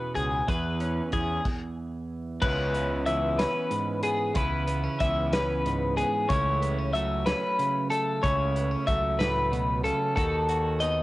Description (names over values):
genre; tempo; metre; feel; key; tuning
math rock and midwest emo; 62 BPM (dotted quarters); 6/8; straight; unclear; A4 = 440 Hz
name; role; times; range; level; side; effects
twelve-string electric guitar; accompaniment; 0.0-11.0 s; E2 to G#4; -31 LUFS; right 4 dB; cassette tape
twelve-string electric guitar; arpeggios; 0.0-11.0 s; G#4 to E5; -27 LUFS; left 2 dB; cassette tape
fuzz fingered electric bass; bass; 0.2-11.0 s; C#2 to E2; -30 LUFS; equal; overdrive
loose indie drum kit; drums; 0.2-11.0 s; crash cymbal, hi-hat, kick drum, snare drum; -32 LUFS; equal; cassette tape
room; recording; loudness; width
light reverb, small room ambience; home recording on cassette; -24 LUFS; side -18 dB against mid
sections
0.0-2.4 A section; 2.4-11.0 B section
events
stop 1.4-2.4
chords
0.0 E6; 6.3 F#m7/C#; 10.2 B7/D#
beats
| 0.48 1.45 | 2.42 3.39 | 4.36 5.32 | 6.29 7.26 | 8.23 9.20 | 10.16